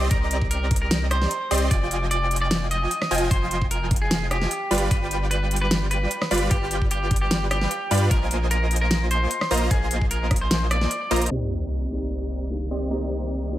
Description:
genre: future bass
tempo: 150 BPM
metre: 4/4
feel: half-time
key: C minor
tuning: A4 = 443 Hz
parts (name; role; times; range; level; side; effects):
- clean electric guitar; melody; 0.0-11.2 s; G4 to Eb5; -27 LUFS; equal; lush chorus, sidechain pumping, digital delay
- supersaw stab; riff; 0.0-13.6 s; F3 to C6; -27 LUFS; right 1 dB; sidechain pumping, low-pass filter
- saturated sub bass; bass; 0.0-13.6 s; F1 to G2; -25 LUFS; equal; sidechain pumping
- electronic kick drum; drums; 0.1-10.4 s; none; -23 LUFS; equal; none
- pop drum kit; drums; 0.1-12.8 s; hi-hat, rim click, snare drum; -26 LUFS; equal; none
- felt-muted upright piano; accompaniment; 11.3-13.6 s; Bb3 to G4; -33 LUFS; left 1 dB; sidechain pumping, digital delay
- warm studio string section; sustained chords; 11.3-13.6 s; G4; -37 LUFS; right 1 dB; sidechain pumping, low-pass filter
- sub drop; sound effects; 11.3-12.9 s; none; -32 LUFS; equal; none
room: light reverb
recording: low-pass filter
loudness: -20 LUFS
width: side -14 dB against mid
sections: 0.0-11.3 A section; 11.3-13.6 B section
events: drop 0.0-11.3; drum fill 11.1; impact 11.3-12.9; filter sweep on supersaw synth 11.3-13.6; filter sweep on string section 11.3-13.6; filter sweep 11.3-13.6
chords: 0.0 Cm7; 1.7 Fm7; 4.7 G7; 8.1 Bb7sus4; 11.3 Cm7

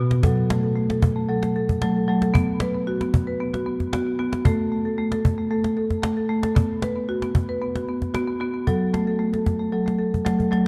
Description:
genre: world meditative, meditative tuned percussion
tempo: 114 BPM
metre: 4/4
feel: straight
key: unclear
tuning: A4 = 440 Hz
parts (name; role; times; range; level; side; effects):
- marimba with medium hard mallets; arpeggios; 0.0-10.7 s; B2 to B4; -24 LUFS; equal; none
- cajon; percussion; 0.1-10.7 s; none; -27 LUFS; equal; none
room: moderate church reverb, RT60 3.1 s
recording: dark, warm production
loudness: -23 LUFS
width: mono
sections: 0.0-10.7 A section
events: drum fill 10.4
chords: 0.2 F#m; 2.4 B5; 4.5 N.C.; 6.6 B5; 8.7 F#m

